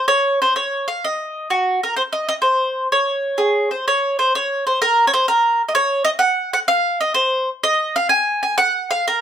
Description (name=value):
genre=italian folk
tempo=127 BPM (dotted quarters)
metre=6/8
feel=rubato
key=Db major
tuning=A4 = 440 Hz
part: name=mandolin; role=solo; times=0.0-9.2 s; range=Gb4 to Ab5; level=-16 LUFS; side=equal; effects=none
room=moderate studio reverb, RT60 0.6 s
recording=none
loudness=-16 LUFS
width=side -9 dB against mid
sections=0.0-3.9 A section; 3.9-9.2 A section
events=none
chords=none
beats=| 0.08 0.56 | 1.03 1.50 | 1.97 2.44 | 2.91 3.39 | 3.87 4.35 | 4.82 5.29 | 5.75 6.21 | 6.68 7.16 | 7.63 8.12 | 8.59 9.07